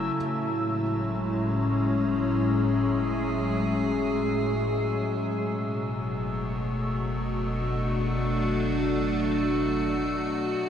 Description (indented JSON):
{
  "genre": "ambient",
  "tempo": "free time",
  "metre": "none",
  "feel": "none",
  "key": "F# minor",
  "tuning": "A4 = 441 Hz",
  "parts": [
    { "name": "evolving wavetable pad", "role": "sustained chords", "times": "0.0-10.7 s", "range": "A2 to A4", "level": "-25 LUFS", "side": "left 1 dB", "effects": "chorus, built-in reverb, shimmer reverb" },
    { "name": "round analog bass", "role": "bass", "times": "0.0-10.7 s", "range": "F#1", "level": "-39 LUFS", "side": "equal", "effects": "none" },
    { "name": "glass harmonica", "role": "texture", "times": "0.0-10.7 s", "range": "E6", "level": "-38 LUFS", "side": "equal", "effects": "shimmer reverb" }
  ],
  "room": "wet huge ambient reverb, RT60 9.0 s",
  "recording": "none",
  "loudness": "-24 LUFS",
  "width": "side -8 dB against mid",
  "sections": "0.2-10.7 A section",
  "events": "fade-in on analog synth bass 0.2-10.7; fade-in on glass harmonica 0.2-10.7",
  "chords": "0.2 F#madd9; 5.4 D6/F#"
}